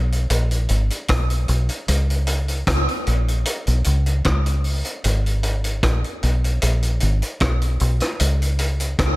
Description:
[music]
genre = dub reggae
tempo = 76 BPM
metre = 4/4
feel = straight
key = G# minor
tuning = A4 = 436 Hz
[part]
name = deep dub fingered electric bass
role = bass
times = 0.0-9.2 s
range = G#1 to C#2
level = -19 LUFS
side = equal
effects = none
[part]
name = vintage drum kit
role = drums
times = 0.1-9.2 s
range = hi-hat, kick drum, rim click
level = -24 LUFS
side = equal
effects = none
[sound]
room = little or no reverb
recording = none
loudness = -18 LUFS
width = side -20 dB against mid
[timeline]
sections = 0.0-9.2 A section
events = none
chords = none

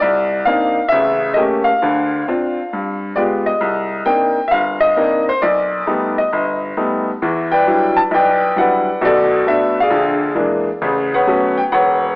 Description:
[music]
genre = solo jazz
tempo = 133 BPM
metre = 4/4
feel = swing 67% on 8ths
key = C minor, E minor from 7.2 s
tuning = A4 = 443 Hz
[part]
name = bright upright piano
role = solo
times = 0.0-12.2 s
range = E1 to A5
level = -13 LUFS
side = left 1 dB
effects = cassette tape
[sound]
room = wet spring reverb, RT60 2.5 s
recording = home recording on cassette, AM radio sound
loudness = -13 LUFS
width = side -27 dB against mid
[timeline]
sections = 0.0-7.2 A section; 7.2-12.2 B section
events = none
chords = 0.0 Cm9; 0.9 A7b9; 1.8 Dm7; 2.7 G7b9; 3.6 Cm9; 5.4 B7alt; 7.2 Em9; 9.0 Bm7; 9.9 A#7#11; 10.8 A69

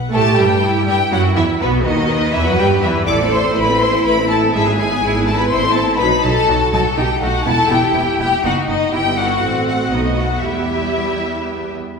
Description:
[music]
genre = quick classical-period movement for string orchestra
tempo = 122 BPM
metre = 3/4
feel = straight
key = E minor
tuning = A4 = 438 Hz
[part]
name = rich studio violin section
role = melody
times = 0.0-11.7 s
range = B4 to D6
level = -19 LUFS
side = left 4 dB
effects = none
[part]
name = rich studio violin section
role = second line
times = 0.1-11.7 s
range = B3 to D5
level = -20 LUFS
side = left 2 dB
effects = none
[part]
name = rich studio viola section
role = accompaniment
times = 0.1-11.8 s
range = D#3 to A4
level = -21 LUFS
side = right 1 dB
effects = none
[part]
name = bright studio cello section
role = bass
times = 0.1-11.7 s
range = D#4 to B4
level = -22 LUFS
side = right 2 dB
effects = none
[part]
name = rich studio double bass section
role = bass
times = 0.1-11.8 s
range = E1 to A2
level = -21 LUFS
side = right 2 dB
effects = none
[sound]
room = wet scoring stage reverb, RT60 1.6 s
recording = heard from further back in the room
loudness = -14 LUFS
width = side -5 dB against mid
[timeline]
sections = 0.1-12.0 A section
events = none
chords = 0.1 Em; 1.6 B; 2.6 Em/G; 3.1 Am; 4.5 E/G#; 5.5 Am; 6.0 B; 7.0 B7; 7.5 Em; 8.4 B; 8.9 Em/G; 9.4 F#dim/A; 9.9 B7; 10.4 Em

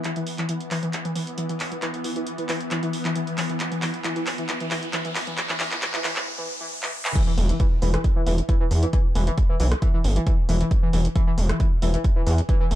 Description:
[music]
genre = driving peak-time techno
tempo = 135 BPM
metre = 4/4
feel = straight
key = unclear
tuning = A4 = 440 Hz
[part]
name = overdriven synth lead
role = riff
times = 0.0-12.6 s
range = E3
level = -28 LUFS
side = left 1 dB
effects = wide subtle chorus, sidechain pumping, tape echo
[part]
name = swarming drone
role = drone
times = 0.0-6.3 s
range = E3 to B3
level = -33 LUFS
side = equal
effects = built-in reverb, sidechain pumping
[part]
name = punchy analog drum machine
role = drums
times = 0.0-12.8 s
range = crash cymbal, handclaps, hi-hat, rim click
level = -29 LUFS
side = equal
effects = none
[part]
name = riser and impact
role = sound effects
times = 1.5-8.9 s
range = none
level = -35 LUFS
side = equal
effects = none
[part]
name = electronic kick drum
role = drums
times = 7.2-12.6 s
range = none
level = -21 LUFS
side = equal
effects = none
[part]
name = gritty driven synth bass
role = bass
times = 7.4-12.8 s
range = E1 to E2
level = -20 LUFS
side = equal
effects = sidechain pumping
[sound]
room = digital ambience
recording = dark, warm production, high-pass filter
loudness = -21 LUFS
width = side -14 dB against mid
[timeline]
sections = 0.0-7.2 A section; 7.2-12.8 B section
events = build-up 0.0-7.2; drum fill 0.0-6.3, 6.8-7.2; filter sweep on analog synth lead 0.0-7.2; filter sweep 0.0-7.2; riser 1.5-7.2; break 6.3-7.2; drop 7.2-12.8; impact 7.2-8.9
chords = 0.0 E5

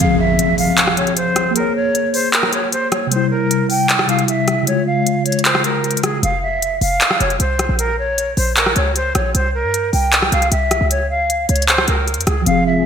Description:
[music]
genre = hip hop, trap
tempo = 154 BPM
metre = 4/4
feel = half-time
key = F harmonic minor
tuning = A4 = 440 Hz
[part]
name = breathy hollow silver concert flute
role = melody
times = 0.0-12.9 s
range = Ab4 to G5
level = -19 LUFS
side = equal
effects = low-pass filter, ping-pong delay
[part]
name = mellow tine electric piano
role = accompaniment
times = 0.0-6.2, 12.4-12.9 s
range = C3 to Db5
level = -18 LUFS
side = left 1 dB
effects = medium stereo tremolo, low-pass filter
[part]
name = trap drum kit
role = drums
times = 0.0-12.6 s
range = handclaps, hi-hat, rim click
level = -17 LUFS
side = equal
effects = gated reverb
[part]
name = impact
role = sound effects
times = 0.0-1.6 s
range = none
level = -23 LUFS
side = right 1 dB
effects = none
[part]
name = short 808-style bass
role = bass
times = 6.2-12.9 s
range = F1 to G2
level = -20 LUFS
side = right 1 dB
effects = none
[part]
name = dark analog pad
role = sustained chords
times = 12.5-12.9 s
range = F3 to Ab4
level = -20 LUFS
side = right 1 dB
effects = wide subtle chorus
[sound]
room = moderate lush hall reverb, RT60 1.6 s, digital ambience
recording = bright 1980s-style digital production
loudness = -14 LUFS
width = side -7 dB against mid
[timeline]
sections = 0.0-12.5 A section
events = break 0.0-6.2; impact 0.0-1.6; kick muted 5.5-6.2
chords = 0.0 Fm; 1.6 Bbm7; 3.1 C; 4.7 Db; 6.2 F5; 7.8 Bbm; 9.3 C; 10.9 Db

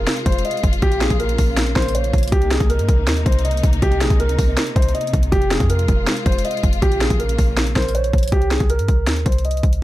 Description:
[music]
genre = hip hop, trap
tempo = 160 BPM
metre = 4/4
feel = half-time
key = C phrygian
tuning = A4 = 440 Hz
[part]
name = dark concert grand piano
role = melody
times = 0.0-9.6 s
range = G4 to Eb5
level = -23 LUFS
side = equal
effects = low-pass filter, ping-pong delay
[part]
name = warm symphonic string section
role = sustained chords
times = 0.0-8.3 s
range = C3 to F4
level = -27 LUFS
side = left 3 dB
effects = none
[part]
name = clean 808-style bass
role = bass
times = 0.0-9.8 s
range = F1 to G2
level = -20 LUFS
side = equal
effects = none
[part]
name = trap drum kit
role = drums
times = 0.1-9.8 s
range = hi-hat, kick drum, snare drum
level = -19 LUFS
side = equal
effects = overdrive
[part]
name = gliding portamento lead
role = second line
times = 1.8-2.3, 7.8-8.3 s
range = Bb4 to Db5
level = -29 LUFS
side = right 5 dB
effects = chorus, tremolo, ping-pong delay
[sound]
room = little or no reverb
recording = dark, warm production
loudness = -15 LUFS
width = side -15 dB against mid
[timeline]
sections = 0.0-8.3 A section; 8.3-9.8 B section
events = none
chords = 0.0 Fm; 0.8 Bbm; 2.3 Cm7; 5.3 Fm; 6.8 Bbm; 8.3 C7(no3)

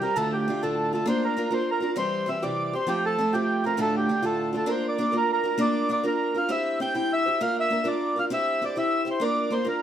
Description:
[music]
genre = celtic folk, Celtic slide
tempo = 132 BPM (dotted quarters)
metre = 12/8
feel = straight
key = unclear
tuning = A4 = 440 Hz
[part]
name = mellow accordion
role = melody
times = 0.0-9.8 s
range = G4 to G5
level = -25 LUFS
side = right 1 dB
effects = none
[part]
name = picked steel-string acoustic guitar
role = accompaniment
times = 0.0-9.8 s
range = D2 to C5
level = -26 LUFS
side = equal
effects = none
[sound]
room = moderate studio reverb, RT60 0.6 s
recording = none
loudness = -23 LUFS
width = side -10 dB against mid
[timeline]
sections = 0.0-9.8 A section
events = none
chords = 0.2 Dm; 1.1 Bb; 2.0 C; 2.9 F; 3.8 Dm; 4.7 Bb; 6.5 C; 7.4 Bb; 8.3 C; 9.2 Bb

